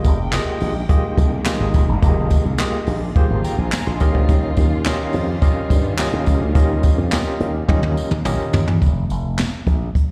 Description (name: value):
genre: early-eighties boogie funk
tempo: 106 BPM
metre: 4/4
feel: straight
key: unclear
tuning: A4 = 440 Hz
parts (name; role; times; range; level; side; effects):
- barky tine electric piano; accompaniment; 0.0-8.7 s; Bb3 to C6; -27 LUFS; equal; overdrive, fast tremolo, plate reverb, slapback echo
- warm studio string section; sustained chords; 0.0-8.8 s; Eb3 to G5; -32 LUFS; equal; none
- slap bass with an envelope filter; bass; 0.0-9.9 s; Eb1 to Eb3; -23 LUFS; equal; none
- jazz brush drum kit; drums; 0.0-10.1 s; handclaps, hi-hat, kick drum, snare drum, toms; -20 LUFS; equal; none
- tambourine; percussion; 0.0-9.5 s; none; -43 LUFS; equal; slapback echo
room: little or no reverb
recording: live gig heard through the venue's PA, recital hall reverb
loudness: -18 LUFS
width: mono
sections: 0.0-8.8 A section; 8.8-10.1 B section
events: tine electric piano fill 3.2-4.3; drum fill 7.7-8.8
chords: 0.0 Fm11; 4.0 Eb9; 8.8 N.C.